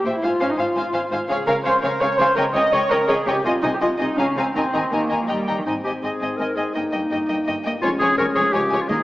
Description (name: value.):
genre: quick classical-period movement for symphony orchestra.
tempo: 167 BPM.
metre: 3/4.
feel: straight.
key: Ab major.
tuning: A4 = 439 Hz.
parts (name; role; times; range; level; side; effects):
muted chamber violin section; melody; 0.0-9.0 s; Eb5 to Bb5; -30 LUFS; left 2 dB; none.
muted chamber viola section; accompaniment; 0.0-9.0 s; F3 to Eb5; -22 LUFS; equal; none.
muted chamber cello section; bass; 0.0-9.0 s; Db2 to G3; -29 LUFS; right 1 dB; none.
muted chamber double bass section; bass; 0.0-9.0 s; F1 to Eb2; -34 LUFS; right 1 dB; none.
muted chamber violin section; second line; 0.1-9.0 s; Bb4 to Ab5; -25 LUFS; left 1 dB; none.
clear clarinet; second line; 5.7-9.0 s; Eb4 to Bb4; -22 LUFS; left 1 dB; none.
mellow French horn section; sustained chords; 5.7-9.0 s; Ab3 to F4; -27 LUFS; left 1 dB; none.
timpani; percussion; 8.9-9.0 s; Eb3; -26 LUFS; equal; none.
room: wet concert hall reverb, RT60 1.8 s.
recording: small speaker sound.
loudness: -18 LUFS.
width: side -16 dB against mid.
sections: 0.0-5.7 A section; 5.7-9.0 B section.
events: none.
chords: 0.2 Fm/Ab; 1.3 Db; 2.4 Eb7/Db; 3.4 Ab/C; 4.2 Bbm/Db; 4.5 Ebsus4; 5.3 Eb; 5.7 Ab; 6.7 Eb/G; 7.8 Db/F; 8.5 Db.